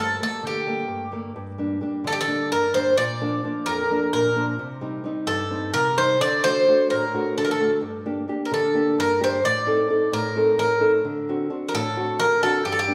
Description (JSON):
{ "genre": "greek folk", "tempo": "260 BPM (eighths)", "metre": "7/8", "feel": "straight", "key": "G minor", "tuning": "A4 = 442 Hz", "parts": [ { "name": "Greek bouzouki", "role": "melody", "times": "0.0-12.9 s", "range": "G4 to D5", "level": "-24 LUFS", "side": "equal", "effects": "none" }, { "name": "nylon-string guitar", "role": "accompaniment", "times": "0.0-12.9 s", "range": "F2 to A4", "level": "-27 LUFS", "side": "equal", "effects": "none" } ], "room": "wet recital hall reverb, RT60 1.6 s", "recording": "recorded in a church or concert hall", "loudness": "-23 LUFS", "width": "mono", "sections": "0.0-1.4 A section; 1.4-12.9 B section", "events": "none", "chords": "0.0 Gmadd9; 1.4 Gm; 3.0 Bb; 4.6 Cm; 6.2 D; 7.8 Gm; 9.4 Adim; 11.0 D7" }